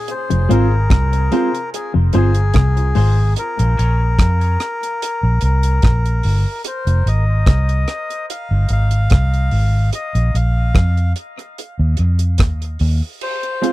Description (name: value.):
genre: dub reggae.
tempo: 73 BPM.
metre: 4/4.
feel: straight.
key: F minor.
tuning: A4 = 440 Hz.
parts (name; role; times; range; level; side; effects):
melodica; melody; 0.0-13.7 s; Ab4 to F5; -24 LUFS; left 2 dB; dub echo.
deep reggae drum kit; drums; 0.1-13.7 s; crash cymbal, hi-hat, kick drum, rim click; -19 LUFS; equal; none.
semi-hollow electric guitar; riff; 0.3-3.2 s; F2 to C3; -23 LUFS; left 5 dB; vibrato effect, dub echo.
vintage muted fingered electric bass; bass; 0.3-13.0 s; F1 to F2; -14 LUFS; equal; none.
mellow electric guitar; accompaniment; 0.5-3.9, 13.6-13.7 s; Ab3 to F4; -23 LUFS; right 4 dB; high-pass filter, dub echo.
bright upright piano; stabs; 0.5-4.0, 13.6-13.7 s; C4 to F5; -28 LUFS; left 7 dB; high-pass filter, dub echo.
room: little or no reverb.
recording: dry, close 1970s-style studio recording.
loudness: -14 LUFS.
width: side -17 dB against mid.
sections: 0.0-13.2 A section.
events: filter sweep 0.1-6.6.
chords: 0.1 Fm; 3.4 Bbm; 6.6 Fm; 9.9 Bb5; 11.6 Ebsus2; 13.2 Fm.